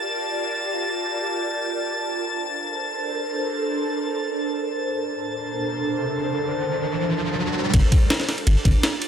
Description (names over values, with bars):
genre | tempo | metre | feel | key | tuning
drum and bass, jungle | free time | none | none | unclear | A4 = 439 Hz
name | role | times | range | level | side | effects
ethereal airy pad | sustained chords | 0.0-9.1 s | D4 to D5 | -26 LUFS | right 1 dB | ensemble chorus, built-in reverb, phaser
drifting glass-harmonics texture | texture | 0.0-9.1 s | A5 to A6 | -29 LUFS | left 1 dB | chorus, built-in reverb
riser | sound effects | 5.6-7.7 s | none | -27 LUFS | right 2 dB | none
long sustained 808-style bass | bass | 7.7-8.7 s | G1 | -19 LUFS | equal | none
breakbeat sampler-style drum kit | drums | 7.7-9.1 s | kick drum, ride cymbal, snare drum | -18 LUFS | equal | small room reverb
room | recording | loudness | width
light reverb, digital ambience | none | -21 LUFS | side -8 dB against mid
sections
0.0-7.7 A section; 7.7-9.1 B section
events
filter sweep on ambient pad 0.0-7.7; riser 5.6-7.7; drop 7.7-9.1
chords
0.0 Gm7; 1.9 Bbmaj9; 7.7 Gm7